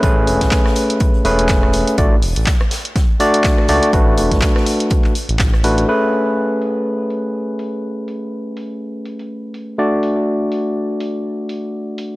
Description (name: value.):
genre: deep house.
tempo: 123 BPM.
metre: 4/4.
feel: swing 57% on 16ths.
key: A major.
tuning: A4 = 440 Hz.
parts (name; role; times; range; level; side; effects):
overdriven tine electric piano; stabs; 0.0-12.2 s; A3 to D5; -17 LUFS; equal; sidechain pumping, low-pass filter, tape echo.
smooth synth bass; bass; 0.0-5.9 s; E1 to C#2; -19 LUFS; equal; sidechain pumping.
electronic kick drum; drums; 0.0-5.5 s; none; -16 LUFS; equal; none.
punchy analog drum machine; drums; 0.0-12.1 s; handclaps, hi-hat, rim click; -24 LUFS; equal; low-pass filter on hats, low-pass filter on snare, low-pass filter on room.
unplugged drum kit; drums; 0.0-5.8 s; hi-hat, snare drum; -33 LUFS; left 2 dB; sidechain pumping on hats, high-pass filter on hats, high-pass filter on snare, high-pass filter on room.
room: little or no reverb.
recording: dry, gritty hardware recording, transformer saturation.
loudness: -14 LUFS.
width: side -20 dB against mid.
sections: 0.0-5.9 A section; 5.9-12.2 B section.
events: filter sweep on tine electric piano 0.0-5.9.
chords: 0.0 Amaj9; 2.0 D; 5.9 Amaj9; 9.8 D/A.